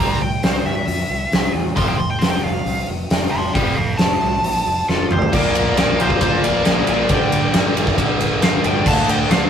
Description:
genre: hard rock.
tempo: 135 BPM.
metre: 4/4.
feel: straight.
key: unclear.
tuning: A4 = 441 Hz.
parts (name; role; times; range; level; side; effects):
high-gain lead guitar; melody; 0.0-9.5 s; A4 to C6; -22 LUFS; equal; distortion.
distorted electric guitar; riff; 0.0-9.5 s; F2 to D4; -22 LUFS; left 4 dB; distortion.
scooped high-gain guitar; riff; 0.0-9.5 s; F2 to D4; -25 LUFS; right 5 dB; distortion.
modern bright fingered electric bass; bass; 0.0-9.5 s; F1 to G2; -26 LUFS; left 1 dB; none.
huge arena drum kit; drums; 0.4-9.4 s; crash cymbal, hi-hat, kick drum, ride cymbal, snare drum, toms; -18 LUFS; equal; none.
bluesy overdriven lead guitar; second line; 4.9-9.5 s; F4 to F5; -26 LUFS; left 1 dB; distortion.
room: light reverb.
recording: rough rehearsal-room recording.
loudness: -15 LUFS.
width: side -8 dB against mid.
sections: 0.0-5.3 A section; 5.3-9.5 B section.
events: lead electric guitar solo 0.0-5.3; drum fill 4.9-5.3.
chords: 0.0 C; 1.8 F; 5.3 Bb; 7.1 G5; 8.9 D5.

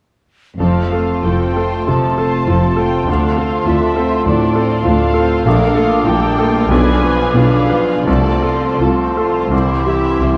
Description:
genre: classical, romantic movement for piano and orchestra.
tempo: 81-102 BPM.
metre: 4/4.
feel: rubato.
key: F major.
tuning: A4 = 440 Hz.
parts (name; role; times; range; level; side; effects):
clear baby grand piano; melody; 0.6-10.4 s; Bb1 to B4; -19 LUFS; equal; none.
dark studio violin section; melody; 0.6-10.2 s; C5 to A5; -26 LUFS; equal; none.
clear clarinet; second line; 0.6-10.4 s; E4 to F4; -28 LUFS; equal; none.
dark cor anglais; second line; 0.6-10.4 s; G4 to B4; -27 LUFS; equal; none.
large flute ensemble; second line; 0.6-10.4 s; C6 to D6; -27 LUFS; equal; none.
rich studio violin section; second line; 0.6-10.4 s; D4 to E5; -28 LUFS; equal; none.
warm studio viola section; accompaniment; 0.6-10.4 s; D3 to E4; -26 LUFS; equal; none.
mellow French horn section; sustained chords; 0.6-10.4 s; E3 to D4; -25 LUFS; equal; none.
rich studio double bass section; bass; 0.6-10.4 s; F1 to D2; -23 LUFS; equal; none.
warm studio cello section; bass; 0.6-10.4 s; D2 to C3; -24 LUFS; equal; none.
room: moderate concert hall reverb, RT60 1.8 s.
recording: dark, warm production.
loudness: -15 LUFS.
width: mono.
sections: 0.6-10.4 A section.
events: none.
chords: 0.6 F; 3.1 Dm7; 5.5 Bbmaj7; 6.7 Bdim7; 8.1 F/C; 9.5 C.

